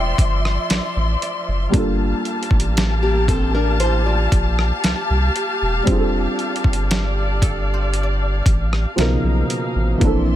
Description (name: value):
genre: contemporary R&B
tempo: 58 BPM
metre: 4/4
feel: straight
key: unclear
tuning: A4 = 438 Hz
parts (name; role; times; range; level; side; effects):
- felt-muted upright piano; accompaniment; 0.0-10.4 s; B2 to C5; -24 LUFS; right 1 dB; none
- warm studio string section; sustained chords; 0.0-10.4 s; F3 to C6; -24 LUFS; left 2 dB; none
- saturated sub bass; bass; 0.0-10.4 s; E1 to C2; -20 LUFS; equal; none
- guzheng; texture; 0.0-9.9 s; A4 to G5; -35 LUFS; left 1 dB; ping-pong delay
- dusty soul sampler-style drum kit; drums; 0.2-10.3 s; hi-hat, kick drum, rim click, snare drum; -19 LUFS; equal; none
- nylon-string guitar; arpeggios; 3.0-5.6 s; Bb3 to D5; -23 LUFS; left 1 dB; none
room: studio reverb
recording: none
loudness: -16 LUFS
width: side -12 dB against mid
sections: 0.0-10.4 A section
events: none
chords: 0.0 Dm9; 1.7 Gm9; 5.9 F69; 9.0 Bmaj9#11